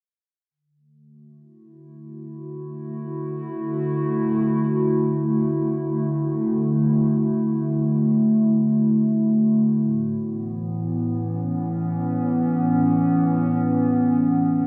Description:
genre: ambient.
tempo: free time.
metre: none.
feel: none.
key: unclear.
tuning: A4 = 440 Hz.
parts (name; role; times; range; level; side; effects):
warbly tape-like pad; sustained chords; 2.1-14.7 s; A2 to F#4; -22 LUFS; equal; chorus, built-in reverb.
room: wet echo chamber reverb, RT60 1.6 s.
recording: none.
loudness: -22 LUFS.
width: mono.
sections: 0.5-5.2 A section; 5.2-14.7 B section.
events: fade-in on ambient pad 0.5-5.2.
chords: 0.5 D; 9.8 A.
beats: free time.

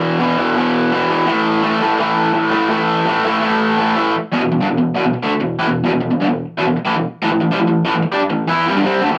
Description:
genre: rock.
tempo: 167 BPM.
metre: 4/4.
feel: straight.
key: unclear.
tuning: A4 = 441 Hz.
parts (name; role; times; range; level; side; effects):
raw garage guitar; solo; 0.0-9.2 s; E2 to E4; -16 LUFS; equal; overdrive, cassette tape.
room: moderate studio reverb, RT60 0.6 s.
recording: home recording on cassette.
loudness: -16 LUFS.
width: mono.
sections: 0.0-4.2 A section; 4.2-9.2 B section.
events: none.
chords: 0.0 E5; 1.3 A5; 4.2 E5; 7.2 A5.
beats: 0.20 0.56 0.92 | 1.27 1.64 1.99 2.35 | 2.71 3.07 3.43 3.79 | 4.15 4.51 4.87 5.23 | 5.59 5.95 6.31 6.67 | 7.04 7.40 7.76 8.12 | 8.48 8.84.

